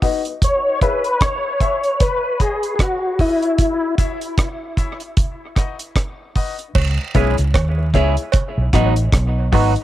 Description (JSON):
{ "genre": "dub reggae", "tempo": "76 BPM", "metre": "4/4", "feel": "swing 58% on 16ths", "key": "C# minor", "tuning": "A4 = 440 Hz", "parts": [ { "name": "warm upright piano", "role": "stabs", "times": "0.0-9.7 s", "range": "D#4 to E5", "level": "-25 LUFS", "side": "left 7 dB", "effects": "high-pass filter, low-pass filter, cassette tape, dub echo" }, { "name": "deep reggae drum kit", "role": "drums", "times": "0.0-9.8 s", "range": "crash cymbal, hi-hat, kick drum, rim click", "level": "-18 LUFS", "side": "right 1 dB", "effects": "cassette tape" }, { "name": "tonewheel organ", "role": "melody", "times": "0.4-4.0 s", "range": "E4 to C#5", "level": "-19 LUFS", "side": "left 1 dB", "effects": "chorus vibrato, slow rotary speaker, low-pass filter, cassette tape, dub echo" }, { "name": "vintage muted fingered electric bass", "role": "bass", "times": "6.8-9.7 s", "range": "G#1 to D#2", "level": "-17 LUFS", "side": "right 1 dB", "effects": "none" }, { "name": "cowbell and jawbone-type rattle", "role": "percussion", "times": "6.8-8.5 s", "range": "none", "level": "-28 LUFS", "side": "right 8 dB", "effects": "dub echo" }, { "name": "electric guitar at the edge of break-up", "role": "accompaniment", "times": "7.2-9.7 s", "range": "F#3 to G#4", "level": "-22 LUFS", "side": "right 10 dB", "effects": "phaser, low-pass filter, cassette tape, dub echo" } ], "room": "small room ambience", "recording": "home recording on cassette", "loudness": "-16 LUFS", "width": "side -14 dB against mid", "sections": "0.0-6.8 A section; 6.8-9.8 B section", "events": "break 0.0-6.8; filter sweep 0.0-6.8; filter sweep on upright piano 0.0-6.8", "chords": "0.4 C#m; 2.0 B; 3.6 C#m; 5.2 B; 6.8 C#m; 8.3 B" }